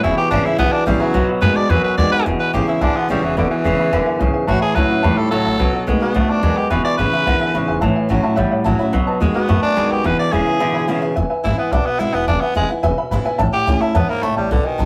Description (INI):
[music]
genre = rock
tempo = 216 BPM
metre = 4/4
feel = straight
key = E major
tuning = A4 = 440 Hz
[part]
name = growling tenor saxophone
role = melody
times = 0.0-14.9 s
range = D3 to D5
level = -22 LUFS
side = equal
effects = none
[part]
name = dark upright piano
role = accompaniment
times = 0.0-14.9 s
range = B4 to B5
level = -26 LUFS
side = equal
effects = none
[part]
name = picked steel-string acoustic guitar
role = accompaniment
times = 0.0-14.9 s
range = E2 to F#4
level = -28 LUFS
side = equal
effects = none
[part]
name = twangy electric guitar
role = riff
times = 0.0-11.1 s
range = E2 to A3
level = -22 LUFS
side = equal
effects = none
[part]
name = upright bass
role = bass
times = 0.0-14.9 s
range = E1 to F#2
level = -22 LUFS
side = equal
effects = none
[sound]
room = moderate small room reverb, RT60 0.5 s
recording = rough rehearsal-room recording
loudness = -17 LUFS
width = mono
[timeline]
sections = 0.0-2.3 A section; 2.3-11.2 B section; 11.2-14.9 C section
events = tenor saxophone solo 11.2-14.9; upright piano fill 13.0-13.4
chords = 0.0 E; 1.1 B7; 2.3 E; 4.5 A; 5.6 B7; 6.7 E; 7.8 A; 8.9 B7; 10.0 E; 13.4 A